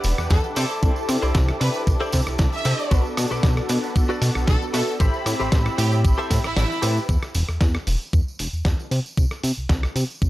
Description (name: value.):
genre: nu-disco, nu disco.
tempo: 115 BPM.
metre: 4/4.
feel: straight.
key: unclear.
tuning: A4 = 441 Hz.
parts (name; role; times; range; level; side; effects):
mellow synth brass; accompaniment; 0.0-7.1 s; B3 to B5; -29 LUFS; equal; chorus, phaser, tape echo.
muted studio string section; sustained chords; 0.0-7.1 s; C4 to E6; -36 LUFS; equal; sidechain pumping.
direct-recorded clean electric guitar; riff; 0.0-7.0 s; E4 to E5; -30 LUFS; left 1 dB; wide subtle chorus.
chorused synth bass; bass; 0.0-10.3 s; E1 to C3; -22 LUFS; equal; transformer saturation.
dusty soul sampler-style drum kit; drums; 0.0-10.1 s; hi-hat, ride cymbal, rim click, snare drum; -28 LUFS; equal; none.
tambourine; percussion; 0.0-10.3 s; none; -36 LUFS; right 2 dB; none.
clear studio violin section; melody; 0.3-7.0 s; E4 to E5; -30 LUFS; equal; tape echo.
electronic kick drum; drums; 0.3-10.3 s; none; -20 LUFS; equal; none.
room: little or no reverb.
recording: dry, gritty hardware recording.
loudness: -19 LUFS.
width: side -16 dB against mid.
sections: 0.0-7.1 A section; 7.1-10.3 B section.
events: drop 0.0-7.1; kick drops out 6.6-7.1; band accent 6.6.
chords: 0.0 Em7; 0.6 C69; 2.9 Bm7; 5.0 Am7; 7.1 N.C..